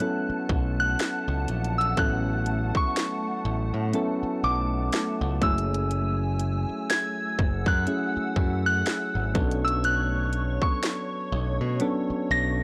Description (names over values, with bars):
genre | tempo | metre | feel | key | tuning
contemporary R&B | 61 BPM | 4/4 | swing 58% on 16ths | A major | A4 = 440 Hz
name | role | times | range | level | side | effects
soft synth bell | melody | 0.0-12.6 s | C#6 to Bb6 | -31 LUFS | equal | chorus, tape echo
soft electric-piano-like synth keys | accompaniment | 0.0-12.6 s | F#3 to A4 | -32 LUFS | equal | chorus
hollow soft pad | sustained chords | 0.0-12.6 s | A3 to E6 | -38 LUFS | equal | ensemble chorus
trap drum kit | drums | 0.0-12.1 s | hi-hat, kick drum, snare drum | -29 LUFS | equal | overdrive
modern bright picked electric bass | bass | 0.3-12.6 s | F#1 to B2 | -30 LUFS | equal | none
room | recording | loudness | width
little or no reverb | dry, gritty hardware recording, cassette tape | -26 LUFS | mono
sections
0.0-12.6 A section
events
none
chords
0.0 A6; 5.4 F#m9; 9.3 Bm9